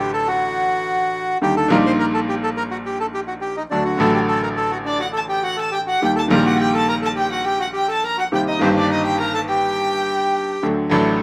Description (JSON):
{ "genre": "tango", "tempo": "104 BPM", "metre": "4/4", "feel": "rubato", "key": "unclear", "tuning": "A4 = 440 Hz", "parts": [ { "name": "bandoneon", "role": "melody", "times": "0.0-10.7 s", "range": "C4 to C5", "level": "-24 LUFS", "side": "equal", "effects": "none" }, { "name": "bright grand piano", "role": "accompaniment", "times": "0.0-11.2 s", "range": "G1 to A4", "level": "-23 LUFS", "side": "equal", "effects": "none" }, { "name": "rich violin", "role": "second line", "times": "4.9-10.6 s", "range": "C5 to Bb5", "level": "-25 LUFS", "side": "equal", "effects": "none" } ], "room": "moderate studio reverb, RT60 0.8 s", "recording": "none", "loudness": "-20 LUFS", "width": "mono", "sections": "0.0-11.2 A section", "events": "none", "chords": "0.0 D; 1.4 Ebmaj7; 3.7 D; 6.0 Eb; 8.3 Cm7; 10.6 D", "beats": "0.27 0.84 | 1.42 1.99 2.56 3.13 | 3.71 4.28 4.86 5.44 | 6.01 6.59 7.17 7.75 | 8.33 8.90 9.48 10.05 | 10.63 11.20" }